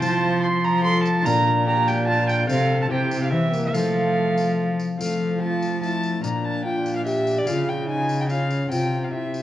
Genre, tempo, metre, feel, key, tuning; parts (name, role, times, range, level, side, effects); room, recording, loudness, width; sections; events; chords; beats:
classical, renaissance-style consort dance; 146 BPM; 3/4; straight; F major; A4 = 440 Hz
rich violin; melody; 0.0-9.4 s; F4 to Bb5; -29 LUFS; left 2 dB
warm viola; second line; 0.0-9.4 s; A3 to C6; -25 LUFS; right 2 dB
concert harp; accompaniment; 0.0-9.4 s; Bb2 to C5; -28 LUFS; left 6 dB
mellow trombone; accompaniment; 0.0-9.4 s; A3 to A4; -27 LUFS; equal
warm cello; bass; 0.0-9.4 s; Bb2 to F3; -25 LUFS; right 1 dB
tambourine; percussion; 0.0-9.4 s; -40 LUFS; left 2 dB
wet recital hall reverb, RT60 1.4 s; worn, warbling old tape, cassette tape, warbly pitch drift, nothing above 11.0 kHz; -20 LUFS; side -13 dB against mid
0.0-5.0 A section; 5.0-9.4 B section
0.0 F; 1.3 Bb; 2.5 Csus4; 2.9 C; 3.7 F; 6.2 Bb; 7.5 Db; 8.7 Csus4
| 0.03 0.44 0.85 | 1.26 1.67 2.08 | 2.50 2.91 3.32 | 3.74 4.16 4.58 | 5.00 5.41 5.83 | 6.24 6.65 7.06 | 7.47 7.88 8.29 | 8.71 9.12